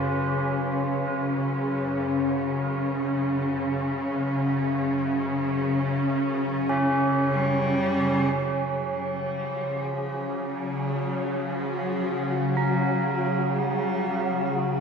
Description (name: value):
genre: dark ambient drone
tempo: free time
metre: none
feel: none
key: F# major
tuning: A4 = 437 Hz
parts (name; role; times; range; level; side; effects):
- dark studio cello section; sustained chords; 0.0-14.8 s; C#3 to C#4; -28 LUFS; equal; none
- tubular bells; arpeggios; 0.0-14.8 s; C#4 to A#4; -31 LUFS; right 2 dB; diffuse ambient delay
- bowed-like drone; drone; 0.0-14.8 s; F#2 to C#3; -28 LUFS; equal; built-in reverb, phaser
- wind-like tuned noise texture; texture; 0.0-14.8 s; F#3 to B4; -33 LUFS; left 1 dB; built-in reverb
- rich cello; melody; 7.3-14.8 s; E#3 to G3; -33 LUFS; right 1 dB; diffuse ambient delay
room: wet lush hall reverb, RT60 3.0 s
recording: dreamy mix soaked in reverb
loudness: -23 LUFS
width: side -6 dB against mid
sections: 0.0-8.3 A section; 8.3-14.8 B section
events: fade-out on synth texture 0.0-8.3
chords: 0.0 F#5